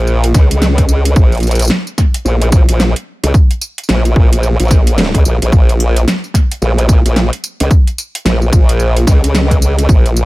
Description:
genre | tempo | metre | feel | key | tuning
glitch hop | 110 BPM | 4/4 | swing 60% on 16ths | Bb minor | A4 = 440 Hz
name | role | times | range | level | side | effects
formant-sweep wobble bass | bass | 0.0-10.3 s | Bb1 to Db2 | -12 LUFS | equal | chorus, tube saturation
pop drum kit | drums | 0.1-10.3 s | hi-hat, snare drum, tambourine | -17 LUFS | equal | overdrive
electronic kick drum | drums | 0.3-10.0 s | none | -9 LUFS | equal | overdrive
room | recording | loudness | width
little or no reverb | none | -9 LUFS | side -19 dB against mid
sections
0.0-10.3 A section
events
none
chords
none

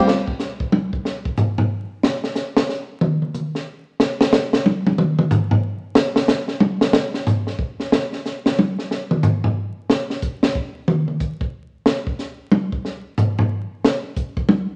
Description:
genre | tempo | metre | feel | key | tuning
jazz | 183 BPM | 3/4 | swing 62% on 8ths | none | none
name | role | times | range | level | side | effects
compact cocktail drum kit | drums | 0.1-14.6 s | hi-hat, kick drum, snare drum, toms | -20 LUFS | equal | none
room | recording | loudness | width
wet large studio reverb, RT60 1.1 s | vinyl crackle, nothing above 10.6 kHz | -21 LUFS | mono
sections
0.1-7.9 A section; 7.9-14.8 A section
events
drum solo 0.1-14.8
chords
none

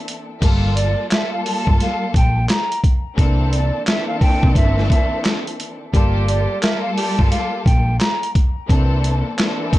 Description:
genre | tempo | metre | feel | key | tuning
hip hop, boom-bap hip-hop | 87 BPM | 4/4 | swing 62% on 16ths | G dorian | A4 = 440 Hz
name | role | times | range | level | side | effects
warm studio string section | accompaniment | 0.0-9.8 s | E3 to A4 | -24 LUFS | left 1 dB | cassette tape, high-pass filter, low-pass filter, plate reverb
boom bap sampler-style drum kit | drums | 0.1-9.8 s | crash cymbal, handclaps, hi-hat, kick drum, snare drum | -17 LUFS | equal | vintage 12-bit sampler grit
hollow-body short-scale fingered electric bass | bass | 0.4-9.2 s | G1 to C2 | -18 LUFS | equal | none
breathy mellow silver concert flute | melody | 0.8-8.3 s | D5 to Bb5 | -25 LUFS | right 1 dB | high-pass filter, low-pass filter, plate reverb, ping-pong delay
mellow horn section | stabs | 5.9-7.6 s | G3 to Bb4 | -28 LUFS | right 1 dB | high-pass filter, low-pass filter, plate reverb, ping-pong delay
room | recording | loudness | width
little or no reverb | dark, warm production | -15 LUFS | side -16 dB against mid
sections
0.4-9.8 A section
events
break 0.0-0.4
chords
0.4 Gm9; 3.2 C13; 5.9 Gm9; 8.7 C13

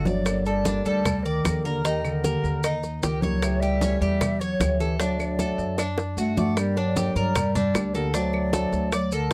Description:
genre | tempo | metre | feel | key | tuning
latin, Cuban son and guajira | 152 BPM | 4/4 | straight | unclear | A4 = 439 Hz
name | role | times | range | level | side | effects
breathy bass clarinet | melody | 0.0-9.3 s | D3 to A3 | -28 LUFS | equal | none
mellow concert flute | second line | 0.0-9.3 s | Bb4 to F#5 | -36 LUFS | equal | none
flamenco guitar | accompaniment | 0.0-9.3 s | C#3 to A4 | -36 LUFS | equal | none
Cuban tres | arpeggios | 0.0-9.3 s | C#4 to D5 | -34 LUFS | equal | none
upright bass | bass | 0.0-9.3 s | G1 to G2 | -32 LUFS | equal | none
bongos | percussion | 0.1-9.3 s | none | -31 LUFS | equal | none
congas | percussion | 0.1-9.3 s | none | -32 LUFS | equal | none
maracas | percussion | 0.1-9.3 s | none | -41 LUFS | equal | none
claves | percussion | 0.3-9.1 s | none | -37 LUFS | equal | none
room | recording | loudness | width
light reverb | dry, close 1970s-style studio recording | -24 LUFS | mono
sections
0.0-6.6 A section; 6.6-9.3 B section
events
drum fill 0.0, 5.8-6.6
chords
0.3 Gmadd9; 1.8 Eb; 3.4 A7/C#; 5.0 D; 6.6 Gm; 8.1 D7

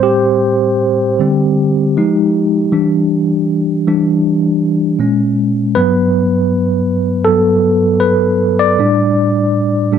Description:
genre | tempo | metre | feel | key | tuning
R&B | 79 BPM | 4/4 | swing 57% on 16ths | unclear | A4 = 440 Hz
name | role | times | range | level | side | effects
tine electric piano | solo | 0.0-10.0 s | G2 to D5 | -11 LUFS | equal | medium stereo tremolo
room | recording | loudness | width
moderate studio reverb, RT60 0.6 s | dark, warm production | -11 LUFS | side -8 dB against mid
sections
0.0-5.7 A section; 5.7-10.0 B section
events
tine electric piano solo 0.0-5.7, 5.7-10.0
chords
0.0 Am7; 1.2 D7sus4; 1.9 Fm9; 2.7 Em7; 5.0 A#m7; 5.7 Gmaj9; 8.8 A7sus4

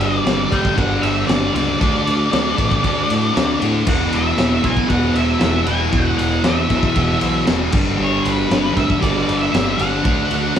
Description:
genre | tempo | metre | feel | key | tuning
garage rock duo or trio | 116 BPM | 4/4 | straight | unclear | A4 = 435 Hz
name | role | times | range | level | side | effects
octave-fuzz lead guitar | melody | 0.0-10.6 s | B4 to G#5 | -22 LUFS | equal | distortion, digital delay
thick fuzz guitar | riff | 0.0-10.6 s | E2 to D4 | -18 LUFS | equal | distortion
growling picked electric bass | bass | 0.0-10.5 s | E1 to A2 | -24 LUFS | right 1 dB | overdrive
crunchy breakbeat drum kit | drums | 0.0-10.6 s | crash cymbal, kick drum, ride cymbal, snare drum | -20 LUFS | equal | none
room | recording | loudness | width
light reverb | band playing live in one room | -15 LUFS | side -9 dB against mid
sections
0.0-10.6 A section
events
none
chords
0.0 G5; 1.8 D5; 3.9 E5; 7.7 G; 10.1 D

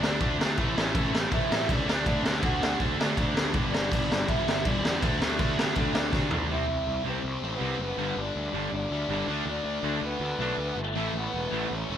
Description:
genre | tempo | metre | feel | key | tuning
punk rock | 162 BPM | 4/4 | straight | unclear | A4 = 440 Hz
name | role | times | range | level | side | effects
raw garage guitar | melody | 0.0-12.0 s | A3 to F#5 | -33 LUFS | equal | overdrive
distorted electric guitar | riff | 0.0-11.7 s | G2 to D4 | -35 LUFS | left 13 dB | distortion
distorted electric guitar | riff | 0.0-11.7 s | G2 to D4 | -33 LUFS | right 14 dB | overdrive
high-gain distorted guitar | riff | 0.0-12.0 s | G2 to D4 | -34 LUFS | left 1 dB | distortion
fuzz picked electric bass | bass | 0.0-12.0 s | E1 to E2 | -32 LUFS | equal | overdrive
raw garage drum kit | drums | 0.0-6.4 s | crash cymbal, kick drum, snare drum, toms | -27 LUFS | equal | none
room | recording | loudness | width
little or no reverb | none | -25 LUFS | side -9 dB against mid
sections
0.0-6.5 A section; 6.5-12.0 B section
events
drum fill 6.1-6.5; half time 6.5-12.0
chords
0.0 D5; 0.6 A; 1.9 D; 3.5 G5; 5.0 D5; 6.5 C; 8.0 G; 9.3 D5; 11.0 A

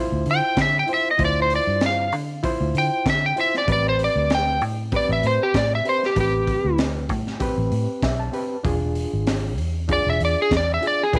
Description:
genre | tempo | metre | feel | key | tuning
straight-eighth soul blues | 97 BPM | 4/4 | swing 55% on 16ths | A minor | A4 = 438 Hz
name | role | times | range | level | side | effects
overdriven reed electric piano | accompaniment | 0.0-11.2 s | C4 to A5 | -30 LUFS | equal | fast tremolo
vintage muted fingered electric bass | bass | 0.0-11.2 s | E1 to D3 | -27 LUFS | equal | none
electric slide guitar | melody | 0.3-11.2 s | G4 to G5 | -23 LUFS | equal | none
crunchy breakbeat drum kit | drums | 0.3-11.2 s | hi-hat, kick drum, snare drum | -30 LUFS | equal | none
room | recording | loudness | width
light reverb, small room ambience | none | -22 LUFS | mono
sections
0.0-11.2 A section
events
electric slide guitar solo 0.0-11.2; reed electric piano fill 7.7-8.7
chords
0.0 Dm9; 3.7 Am9; 8.7 E7b9

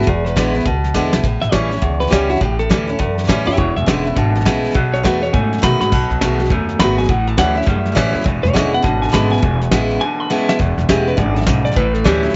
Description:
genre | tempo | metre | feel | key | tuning
rockabilly | 205 BPM | 4/4 | swing 63% on 8ths | E mixolydian | A4 = 445 Hz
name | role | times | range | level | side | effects
clean electric guitar | melody | 0.0-12.4 s | E4 to B5 | -24 LUFS | equal | tape echo
picked steel-string acoustic guitar | accompaniment | 0.0-12.3 s | E2 to F#4 | -22 LUFS | equal | none
upright bass | bass | 0.0-12.3 s | E1 to B2 | -22 LUFS | equal | none
soft brush drum kit | drums | 0.0-12.3 s | hi-hat, kick drum, snare drum, splash cymbal | -22 LUFS | equal | none
electric guitar through a small old amp | riff | 3.6-12.3 s | E2 to A3 | -26 LUFS | equal | tremolo
room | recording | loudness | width
light reverb, small room ambience | nothing above 7.8 kHz | -16 LUFS | mono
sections
0.0-10.6 A section; 10.6-12.4 B section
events
drum fill 1.0, 5.8, 10.3; clean electric guitar solo 10.6-12.4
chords
0.0 E7; 1.2 A7; 3.6 E7; 4.8 B7; 7.1 A7; 8.3 E7; 11.8 A7

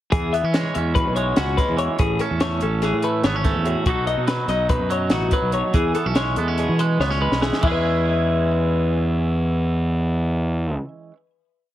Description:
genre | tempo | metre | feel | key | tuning
math rock and midwest emo | 287 BPM (eighths) | 9/8 | straight | E major | A4 = 441 Hz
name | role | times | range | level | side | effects
twangy electric guitar | accompaniment | 0.1-11.2 s | A2 to A4 | -26 LUFS | right 7 dB | none
twelve-string electric guitar | arpeggios | 0.1-10.9 s | E4 to E5 | -24 LUFS | left 6 dB | digital delay
fuzz fingered electric bass | bass | 0.1-10.8 s | G#1 to E3 | -22 LUFS | equal | overdrive
compact cocktail drum kit | drums | 0.1-7.7 s | crash cymbal, hi-hat, kick drum, snare drum | -23 LUFS | equal | none
room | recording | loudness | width
light reverb | heavily compressed radio sound | -18 LUFS | side -13 dB against mid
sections
0.1-7.6 A section; 7.6-11.4 final chord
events
drum fill 7.0-7.6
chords
0.1 E6; 2.0 Amaj7; 3.9 B7; 5.7 E6

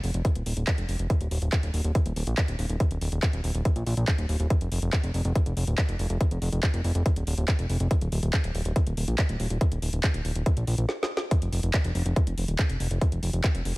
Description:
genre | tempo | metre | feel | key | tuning
psychedelic trance | 141 BPM | 4/4 | straight | unclear | A4 = 436 Hz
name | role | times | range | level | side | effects
fat analog bass | bass | 0.0-13.7 s | Eb1 to Bb1 | -26 LUFS | equal | none
drum and bass drum kit | drums | 0.0-13.7 s | handclaps, hi-hat, snare drum | -33 LUFS | equal | none
electronic kick drum | drums | 0.2-13.5 s | none | -23 LUFS | equal | none
room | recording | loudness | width
little or no reverb | none | -24 LUFS | side -22 dB against mid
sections
0.0-11.3 A section; 11.3-13.8 B section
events
drum fill 10.9-11.3; stop 10.9-11.3; drop 11.3-13.8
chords
none

